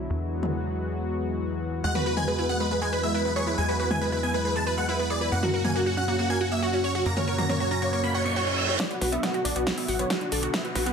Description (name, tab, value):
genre	uplifting trance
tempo	138 BPM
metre	4/4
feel	straight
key	B dorian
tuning	A4 = 439 Hz
part	lush unison pad	sustained chords	0.0-10.9 s	A#2 to F#4	-31 LUFS	left 1 dB	chorus, sidechain pumping
part	tight sequencer bass	bass	0.0-10.9 s	A1 to F#2	-31 LUFS	equal	sidechain pumping
part	big-room dance drum kit	drums	0.4-10.9 s	hi-hat, snare drum, toms	-30 LUFS	equal	sidechain pumping on toms, sidechain pumping on hats
part	big supersaw lead	melody	1.8-10.9 s	F#4 to E6	-27 LUFS	equal	sidechain pumping, low-pass filter, digital delay
part	wide unison pluck	arpeggios	1.8-10.9 s	G#3 to F#5	-32 LUFS	right 3 dB	sidechain pumping, dub echo
part	reverse cymbal and riser	sound effects	8.1-10.9 s	none	-32 LUFS	right 4 dB	none
part	electronic kick drum	drums	8.8-10.8 s	none	-36 LUFS	equal	none
room	moderate digital room reverb, RT60 1.2 s, digital ambience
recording	none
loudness	-24 LUFS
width	side -6 dB against mid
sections	0.0-8.8 A section; 8.8-10.9 B section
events	filter sweep on analog synth pad 0.0-8.8; reverse cymbal 8.1-8.8; build-up 8.8-10.9; drum fill 8.8-10.9; riser 8.8-10.9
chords	0.1 Eadd9; 5.3 F#; 8.8 Bm